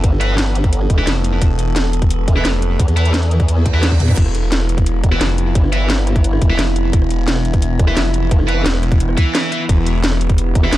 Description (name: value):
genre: dark technical drum and bass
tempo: 174 BPM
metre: 4/4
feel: straight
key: E phrygian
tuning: A4 = 441 Hz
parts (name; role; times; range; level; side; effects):
- metallic inharmonic drone; sustained chords; 0.0-10.8 s; E3 to A4; -23 LUFS; right 1 dB; chorus, built-in reverb, sidechain pumping
- formant-sweep wobble bass; bass; 0.0-10.7 s; E1 to E2; -16 LUFS; equal; chorus
- phased detuned saw bass; bass; 0.0-10.8 s; E1 to F1; -17 LUFS; equal; phaser
- drum and bass drum kit; drums; 0.0-10.8 s; crash cymbal, hi-hat, rim click, snare drum, toms; -21 LUFS; equal; none
- electronic kick drum; drums; 0.0-10.6 s; none; -14 LUFS; equal; none
- scooped high-gain guitar; stabs; 0.2-10.7 s; E4 to E5; -24 LUFS; right 1 dB; distortion, digital delay
- reverse cymbal; sound effects; 3.6-4.2 s; none; -30 LUFS; right 5 dB; none
room: digital ambience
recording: dark, warm production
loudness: -13 LUFS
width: side -15 dB against mid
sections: 0.0-10.8 A section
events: reverse cymbal 3.6-4.2; drum fill 3.9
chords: 0.0 E5